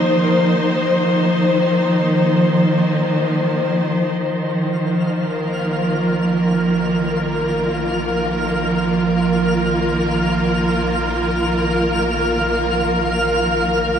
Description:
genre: ambient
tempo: free time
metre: none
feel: none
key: unclear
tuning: A4 = 440 Hz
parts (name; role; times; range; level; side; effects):
- dark symphonic string section; sustained chords; 0.0-14.0 s; Eb3 to C5; -16 LUFS; equal; low-pass filter
- felt-muted upright piano; arpeggios; 0.0-4.2 s; none; barely audible; none; none
- warm sub bass; bass; 4.2-14.0 s; Bb1; -30 LUFS; equal; none
- twinkling granular texture; texture; 4.8-14.0 s; F5 to F6; -24 LUFS; equal; built-in reverb
room: wet lush hall reverb, RT60 2.8 s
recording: cassette tape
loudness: -16 LUFS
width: side -8 dB against mid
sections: 0.0-4.2 A section; 4.2-14.0 B section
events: fade-in on sub bass 4.2-14.0; filter sweep on string section 4.2-14.0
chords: 0.0 Bb7sus4; 4.2 Bbsus4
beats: free time

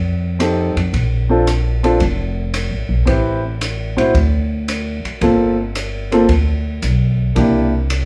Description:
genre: jazz, small-group swing and bop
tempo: 112 BPM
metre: 4/4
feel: swing 69% on 8ths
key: unclear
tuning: A4 = 442 Hz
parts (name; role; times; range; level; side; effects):
- upright bass; bass; 0.0-8.1 s; F1 to A2; -20 LUFS; equal; none
- warm baby grand piano; accompaniment; 0.4-7.7 s; Bb3 to C5; -18 LUFS; equal; none
- open jazz drum kit; drums; 0.4-8.1 s; hi-hat, kick drum, ride cymbal; -27 LUFS; equal; none
room: wet club reverb, RT60 0.7 s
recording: heard from further back in the room, studio ambience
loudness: -17 LUFS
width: mono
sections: 0.0-8.1 A section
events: none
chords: 0.0 F9; 0.9 Bbmaj9; 3.1 Am9; 4.1 N.C.; 5.2 Gm11; 7.4 C9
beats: 0.39 | 0.93 1.46 2.00 2.53 | 3.07 3.61 4.14 4.68 | 5.22 5.75 6.29 6.83 | 7.36 7.90

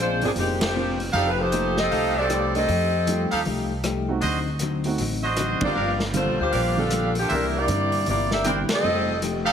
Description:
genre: jazz, big band swing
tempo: 156 BPM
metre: 4/4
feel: swing 64% on 8ths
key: F mixolydian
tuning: A4 = 440 Hz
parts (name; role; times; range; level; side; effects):
- clear saxophone section; melody; 0.0-3.3, 5.6-9.5 s; Eb3 to G5; -24 LUFS; left 1 dB; none
- vintage hollow-body jazz guitar; accompaniment; 0.0-9.5 s; G2 to G4; -30 LUFS; left 6 dB; none
- upright bass; bass; 0.0-9.5 s; F1 to G2; -28 LUFS; equal; none
- warm baby grand piano; accompaniment; 0.2-9.1 s; D3 to D5; -30 LUFS; right 4 dB; none
- vintage drum kit; drums; 0.2-9.5 s; hi-hat, kick drum, ride cymbal, rim click, snare drum; -31 LUFS; equal; none
- brilliant trumpet section; stabs; 1.1-9.5 s; D4 to G5; -27 LUFS; right 3 dB; none
room: moderate recital hall reverb, RT60 1.8 s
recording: heavily compressed radio sound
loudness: -21 LUFS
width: side -8 dB against mid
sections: 0.0-9.5 A section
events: band accent 0.6, 5.6, 8.6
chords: 0.0 Bb9; 1.1 F9; 4.2 D7b9; 5.8 Gm7; 7.3 C9; 8.8 F9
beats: 0.37 0.75 | 1.14 1.52 1.91 2.30 | 2.68 3.07 3.45 3.84 | 4.22 4.61 4.99 5.38 | 5.76 6.14 6.53 6.91 | 7.30 7.68 8.07 8.45 | 8.84 9.22

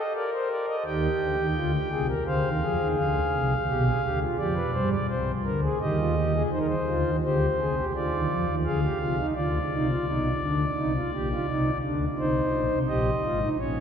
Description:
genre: classical, baroque-style 3-part fugue for pipe organ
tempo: 85 BPM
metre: 4/4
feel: straight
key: C minor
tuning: A4 = 440 Hz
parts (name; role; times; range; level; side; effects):
- pipe organ, principal; solo; 0.0-13.8 s; Ab1 to G5; -24 LUFS; equal; none
room: wet cathedral reverb, RT60 5.9 s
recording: heard from further back in the room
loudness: -24 LUFS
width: side -8 dB against mid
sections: 0.0-6.5 A section; 6.5-13.8 B section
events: none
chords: 0.0 Gm (rootless); 0.9 Cm; 2.3 Dm7b5; 3.7 G7/B; 5.1 Cm; 8.0 Dm7; 9.4 Bdim; 10.8 Cm; 12.2 Ab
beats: 0.15 | 0.86 1.56 2.27 2.98 | 3.69 4.39 5.10 5.81 | 6.53 7.24 7.95 8.65 | 9.36 10.07 10.78 11.48 | 12.18 12.88 13.59

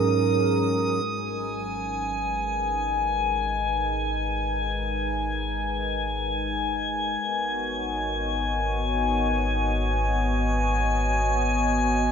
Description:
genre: ambient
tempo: free time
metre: none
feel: none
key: G# minor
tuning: A4 = 440 Hz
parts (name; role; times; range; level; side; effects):
- warm analog pad; sustained chords; 0.0-12.1 s; G#2 to D#5; -28 LUFS; right 1 dB; chorus
- drifting glass-harmonics texture; texture; 0.0-12.1 s; G#5 to D#6; -26 LUFS; left 2 dB; chorus, built-in reverb
- warm sub bass; bass; 1.0-12.1 s; G#1; -30 LUFS; left 1 dB; none
room: wet cathedral reverb, RT60 5.4 s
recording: in a vast, echoing space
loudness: -23 LUFS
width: side -7 dB against mid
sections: 0.0-1.0 A section; 1.0-12.1 B section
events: fade-in on analog synth pad 1.0-12.1; fade-in on sub bass 1.0-12.1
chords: 0.0 F#/G#; 1.0 G#madd9; 7.2 G#m9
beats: free time

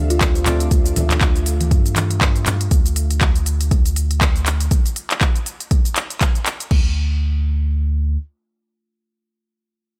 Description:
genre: afro house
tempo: 120 BPM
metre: 4/4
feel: swing 57% on 16ths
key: D minor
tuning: A4 = 441 Hz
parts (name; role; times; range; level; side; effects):
- ethereal airy pad; sustained chords; 0.0-2.7 s; D4 to F5; -37 LUFS; equal; ensemble chorus, built-in reverb, sidechain pumping
- warm analog keys; stabs; 0.0-0.7 s; C4 to D5; -34 LUFS; equal; chorus, sidechain pumping, dub echo
- warm sub bass; bass; 0.0-8.2 s; D2 to G2; -21 LUFS; equal; tube saturation, sidechain pumping
- kalimba; arpeggios; 0.1-0.6 s; A3 to C5; -30 LUFS; equal; sidechain pumping, dub echo
- afro-pop drum kit; drums; 0.1-6.8 s; crash cymbal, handclaps, hi-hat, shaker; -25 LUFS; equal; studio reverb
- electronic kick drum; drums; 0.2-6.8 s; none; -19 LUFS; equal; overdrive, studio reverb
- congas; percussion; 0.5-2.6 s; none; -28 LUFS; equal; none
room: little or no reverb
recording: none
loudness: -18 LUFS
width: mono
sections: 0.0-6.7 A section; 6.7-10.0 B section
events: drop 0.0-6.7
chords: 0.0 Dm7; 2.7 N.C.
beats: 0.21 | 0.71 1.21 1.71 2.21 | 2.71 3.21 3.71 4.21 | 4.71 5.21 5.71 6.21 | 6.71 7.21 7.71

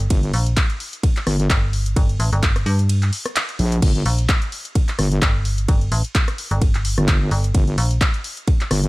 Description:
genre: bass house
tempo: 129 BPM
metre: 4/4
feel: swing 56% on 16ths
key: G minor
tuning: A4 = 440 Hz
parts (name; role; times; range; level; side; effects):
- metallic FM bass; bass; 0.0-8.0 s; G1 to G2; -19 LUFS; equal; tube saturation, sidechain pumping
- big-room dance drum kit; drums; 0.0-8.9 s; crash cymbal, handclaps, hi-hat, ride cymbal, rim click; -25 LUFS; equal; none
- wobble bass; bass; 0.1-8.9 s; G1 to Bb1; -18 LUFS; equal; chorus, tube saturation, sidechain pumping
- electronic kick drum; drums; 0.1-8.6 s; none; -17 LUFS; equal; none
room: little or no reverb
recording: none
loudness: -17 LUFS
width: side -22 dB against mid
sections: 0.0-8.9 A section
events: kick drops out 2.9-3.8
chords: none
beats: | 0.10 0.57 1.03 1.50 | 1.97 2.43 2.90 3.36 | 3.83 4.29 4.76 5.22 | 5.69 6.15 6.62 7.08 | 7.55 8.01 8.48

